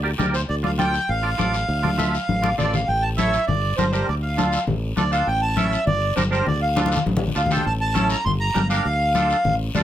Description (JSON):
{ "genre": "latin, cumbia", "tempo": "201 BPM", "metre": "4/4", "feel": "straight", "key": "D minor", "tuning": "A4 = 440 Hz", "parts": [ { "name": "twangy electric guitar", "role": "accompaniment", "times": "0.0-9.8 s", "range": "C#4 to E5", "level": "-26 LUFS", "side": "right 3 dB", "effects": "ensemble chorus" }, { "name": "fingered electric bass", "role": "bass", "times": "0.0-9.8 s", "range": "G1 to D2", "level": "-24 LUFS", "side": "equal", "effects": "none" }, { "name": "congas", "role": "percussion", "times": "0.2-9.8 s", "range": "none", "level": "-25 LUFS", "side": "left 3 dB", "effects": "none" }, { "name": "guiro", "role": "percussion", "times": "0.2-9.8 s", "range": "none", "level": "-33 LUFS", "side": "left 6 dB", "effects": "none" }, { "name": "accordion", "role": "melody", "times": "0.3-9.8 s", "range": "C5 to C6", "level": "-23 LUFS", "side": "right 1 dB", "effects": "none" } ], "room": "moderate studio reverb, RT60 0.5 s", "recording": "none", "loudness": "-19 LUFS", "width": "side -11 dB against mid", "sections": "0.0-2.9 A section; 2.9-9.8 B section", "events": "drum fill 2.3-2.9, 6.8-7.7", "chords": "0.5 Dm; 2.9 A; 3.5 Gm; 4.1 Dm; 5.3 A; 5.9 Gm; 6.5 Dm; 7.7 A; 8.3 Gm; 8.8 Dm" }